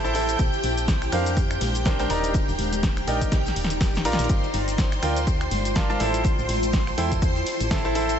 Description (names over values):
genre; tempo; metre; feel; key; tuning
piano house; 123 BPM; 4/4; swing 57% on 16ths; unclear; A4 = 442 Hz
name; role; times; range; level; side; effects
string machine, violins; sustained chords; 0.0-8.2 s; G4 to C6; -30 LUFS; equal; ensemble chorus, sidechain pumping
clear concert grand piano; riff; 0.0-8.2 s; D4 to Bb5; -28 LUFS; right 1 dB; sidechain pumping, ping-pong delay
solid FM bass; bass; 0.0-8.2 s; Eb1 to F2; -28 LUFS; equal; sidechain pumping
punchy analog drum machine; drums; 0.0-8.2 s; finger snaps, hi-hat, shaker, snare drum; -31 LUFS; equal; overdrive
tambourine and congas; percussion; 0.0-8.2 s; none; -37 LUFS; left 3 dB; none
granular cloud pad; texture; 0.0-8.2 s; D4 to Bb5; -32 LUFS; left 1 dB; built-in reverb, sidechain pumping
breakbeat sampler-style drum kit; drums; 0.1-8.1 s; hi-hat, shaker, snare drum; -42 LUFS; left 1 dB; none
electronic kick drum; drums; 0.4-7.8 s; none; -24 LUFS; equal; overdrive
room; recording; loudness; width
light reverb, digital ambience; nothing above 8.0 kHz; -21 LUFS; side -8 dB against mid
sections
0.0-8.2 A section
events
drum fill 3.3-4.3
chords
0.4 Bbadd9; 2.1 Ebmaj7; 4.3 Gm7; 6.0 Am7